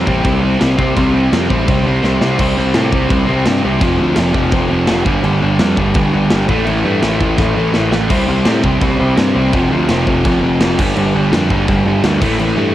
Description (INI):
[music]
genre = punk rock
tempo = 168 BPM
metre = 4/4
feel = straight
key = unclear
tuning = A4 = 440 Hz
[part]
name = raw garage guitar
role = riff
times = 0.0-12.7 s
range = F2 to C4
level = -19 LUFS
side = left 6 dB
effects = overdrive, cassette tape
[part]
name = scooped high-gain guitar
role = riff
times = 0.0-12.7 s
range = F2 to C4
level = -22 LUFS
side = equal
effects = distortion, cassette tape
[part]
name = sludgy distorted guitar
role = riff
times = 0.0-12.7 s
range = F2 to C4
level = -17 LUFS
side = right 5 dB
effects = overdrive, cassette tape
[part]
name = growling picked electric bass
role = bass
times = 0.0-12.7 s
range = F1 to A2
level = -18 LUFS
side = equal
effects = overdrive
[part]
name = big rock drum kit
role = drums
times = 0.1-12.5 s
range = crash cymbal, kick drum, snare drum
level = -18 LUFS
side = equal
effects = cassette tape
[sound]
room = little or no reverb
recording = home recording on cassette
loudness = -12 LUFS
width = side -13 dB against mid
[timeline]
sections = 0.0-2.4 A section; 2.4-12.7 B section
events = drum fill 2.0-2.4, 7.4-8.1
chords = 0.0 C5; 3.8 F5; 5.1 G5; 6.5 A5; 8.1 C5; 9.5 F5; 10.8 G5; 12.2 A5